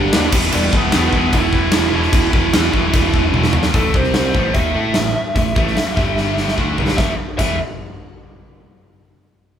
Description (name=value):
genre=hard rock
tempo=148 BPM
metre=4/4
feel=straight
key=E minor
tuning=A4 = 441 Hz
part: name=lead guitar through a small cranked amp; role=melody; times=0.0-7.6 s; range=G3 to E5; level=-22 LUFS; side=right 3 dB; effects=overdrive
part: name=phased analog pad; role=sustained chords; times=0.0-3.7 s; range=D4 to G5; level=-36 LUFS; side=left 2 dB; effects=none
part: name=cranked stack guitar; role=riff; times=0.0-7.6 s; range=E2 to A4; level=-23 LUFS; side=right 5 dB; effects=overdrive
part: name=distorted electric guitar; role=riff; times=0.0-3.5 s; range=E2 to G3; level=-23 LUFS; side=equal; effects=overdrive
part: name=scooped high-gain guitar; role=riff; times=0.0-7.6 s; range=E2 to A4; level=-23 LUFS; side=left 7 dB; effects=distortion
part: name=modern bright picked electric bass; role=bass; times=0.0-7.6 s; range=E1 to A2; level=-22 LUFS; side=equal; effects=none
part: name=huge arena drum kit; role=drums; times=0.1-7.5 s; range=crash cymbal, hi-hat, kick drum, snare drum, toms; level=-18 LUFS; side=equal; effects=none
room=light reverb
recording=band playing live in one room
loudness=-14 LUFS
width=side -9 dB against mid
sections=0.0-3.7 A section; 3.7-7.0 B section; 7.0-8.6 C section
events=drum fill 3.3-3.7, 6.2-7.0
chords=0.3 Em; 3.7 A5; 3.9 C5; 4.4 A5; 6.0 G5; 6.6 Gsus2; 7.0 E5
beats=0.13 | 0.53 0.93 1.33 1.73 | 2.13 2.54 2.94 3.34 | 3.75 4.15 4.55 4.96 | 5.36 5.77 6.17 6.58 | 6.99 7.39